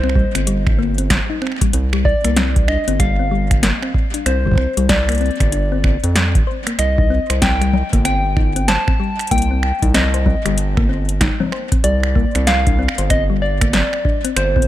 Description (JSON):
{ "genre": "IDM", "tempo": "95 BPM", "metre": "4/4", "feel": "swing 62% on 16ths", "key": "unclear", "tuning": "A4 = 440 Hz", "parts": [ { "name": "soft struck synth lead", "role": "melody", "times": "0.0-14.7 s", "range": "C5 to A5", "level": "-22 LUFS", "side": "left 1 dB", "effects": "chorus, ping-pong delay" }, { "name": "thumb-piano-like synth pluck", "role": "arpeggios", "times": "0.0-14.6 s", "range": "G3 to C5", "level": "-23 LUFS", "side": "left 4 dB", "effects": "chorus, dub echo" }, { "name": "round analog bass", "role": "bass", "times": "0.0-14.7 s", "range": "G1 to F2", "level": "-18 LUFS", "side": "equal", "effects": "none" }, { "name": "electro analog drum machine", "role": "drums", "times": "0.0-14.7 s", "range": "congas, finger snaps, hi-hat, snare drum", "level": "-21 LUFS", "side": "equal", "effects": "digital delay" }, { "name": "electronic kick drum", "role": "drums", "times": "0.2-14.7 s", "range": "none", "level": "-18 LUFS", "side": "equal", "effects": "none" } ], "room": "little or no reverb", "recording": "none", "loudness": "-14 LUFS", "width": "side -13 dB against mid", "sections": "0.0-14.7 A section", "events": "none", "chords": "0.0 C5; 1.7 Bbadd9 (rootless); 6.8 Cm; 11.8 Bbadd9 (rootless)" }